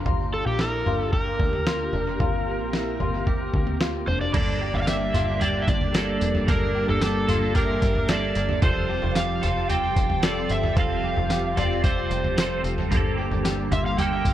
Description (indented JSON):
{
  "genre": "dream pop",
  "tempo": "112 BPM",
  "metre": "4/4",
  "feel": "straight",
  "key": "unclear",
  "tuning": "A4 = 439 Hz",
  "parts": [
    { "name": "ensemble organ-string", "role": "sustained chords", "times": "0.0-14.3 s", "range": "F3 to A5", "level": "-30 LUFS", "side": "equal", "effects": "ensemble chorus" },
    { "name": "electric guitar at the edge of break-up", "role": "arpeggios", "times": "0.0-14.3 s", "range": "D4 to A4", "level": "-33 LUFS", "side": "left 4 dB", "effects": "wide subtle chorus, dub echo" },
    { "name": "plucky analog bass", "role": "bass", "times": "0.0-14.3 s", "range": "F1 to D2", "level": "-28 LUFS", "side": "equal", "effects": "none" },
    { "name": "lo-fi sampler-style drum kit", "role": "drums", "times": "0.1-14.3 s", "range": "crash cymbal, kick drum, snare drum, tambourine, toms", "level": "-26 LUFS", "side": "equal", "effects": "none" },
    { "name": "overdriven slide guitar", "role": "melody", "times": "0.3-14.3 s", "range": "G4 to G5", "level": "-28 LUFS", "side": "right 1 dB", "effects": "dub echo" },
    { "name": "clean electric guitar", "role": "accompaniment", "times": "4.3-14.3 s", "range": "G2 to A4", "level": "-31 LUFS", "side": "right 3 dB", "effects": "tremolo, ensemble chorus" },
    { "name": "vibraphone with medium mallets", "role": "texture", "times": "4.7-9.7, 13.9-14.3 s", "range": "D5 to F6", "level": "-40 LUFS", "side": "left 3 dB", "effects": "none" }
  ],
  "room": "moderate spring reverb, RT60 2.5 s",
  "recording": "echo-heavy mix",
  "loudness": "-21 LUFS",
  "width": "side -12 dB against mid",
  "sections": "0.0-4.3 A section; 4.3-14.3 B section",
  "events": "none",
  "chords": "0.1 Gm; 4.3 Gmadd9; 8.6 Fadd9; 12.9 Gmadd9",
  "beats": "| 0.06 0.59 1.13 1.66 | 2.20 2.73 3.27 3.81 | 4.34 4.88 5.41 5.95 | 6.48 7.02 7.55 8.09 | 8.63 9.16 9.70 10.23 | 10.77 11.30 11.84 12.38 | 12.91 13.45 13.98"
}